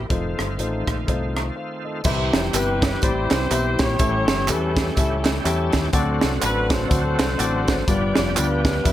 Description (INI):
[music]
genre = uptempo gospel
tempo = 124 BPM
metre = 4/4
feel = swing 59% on 8ths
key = C major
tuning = A4 = 435 Hz
[part]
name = bright tonewheel organ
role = sustained chords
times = 0.0-8.9 s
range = D3 to A5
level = -29 LUFS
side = right 2 dB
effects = slow rotary speaker, overdrive, chorus vibrato
[part]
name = fingered electric bass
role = bass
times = 0.0-8.9 s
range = F1 to F2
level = -25 LUFS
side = equal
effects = none
[part]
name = warm grand piano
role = accompaniment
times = 0.1-8.9 s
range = G2 to B5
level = -26 LUFS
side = left 4 dB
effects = none
[part]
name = crisp fusion drum kit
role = drums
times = 0.1-8.9 s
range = crash cymbal, hi-hat, kick drum, rim click, snare drum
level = -22 LUFS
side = right 1 dB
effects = none
[part]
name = tambourine and handclaps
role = percussion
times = 2.0-8.9 s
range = none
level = -30 LUFS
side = right 6 dB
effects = none
[part]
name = mellow saxophone section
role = melody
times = 2.5-8.9 s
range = C#4 to D5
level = -25 LUFS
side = left 1 dB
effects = none
[sound]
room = small room reverb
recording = none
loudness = -19 LUFS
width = side -13 dB against mid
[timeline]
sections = 0.0-2.1 A section; 2.1-8.9 B section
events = break 1.6-2.1; tonewheel organ fill 5.2-5.9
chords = 0.1 F7; 2.1 Cmaj7; 4.0 A7; 5.9 D7; 7.9 G7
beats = | 0.10 0.59 1.08 1.56 | 2.05 2.54 3.02 3.51 | 4.00 4.48 4.97 5.45 | 5.94 6.42 6.91 7.40 | 7.88 8.37 8.85